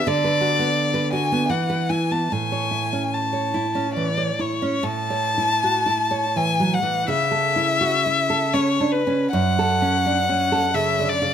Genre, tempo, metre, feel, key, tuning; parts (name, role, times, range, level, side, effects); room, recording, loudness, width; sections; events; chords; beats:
romantic duo for violin and classical guitar; 66-87 BPM; 3/4; rubato; A major; A4 = 441 Hz
rich violin; melody; 0.0-11.3 s; B4 to A5; -21 LUFS; left 4 dB
nylon-string guitar; accompaniment; 0.0-11.3 s; F#2 to C#5; -22 LUFS; right 3 dB
light reverb; close, detailed microphones; -19 LUFS; side -8 dB against mid
0.0-4.8 A section; 4.8-11.3 B section
0.1 Bm/D; 1.5 E5; 2.3 A; 7.1 A/C#; 9.3 F#m
| 0.07 0.77 1.51 | 2.31 3.12 3.94 | 4.82 5.60 6.34 | 7.08 7.79 8.52 | 9.31 10.04 10.74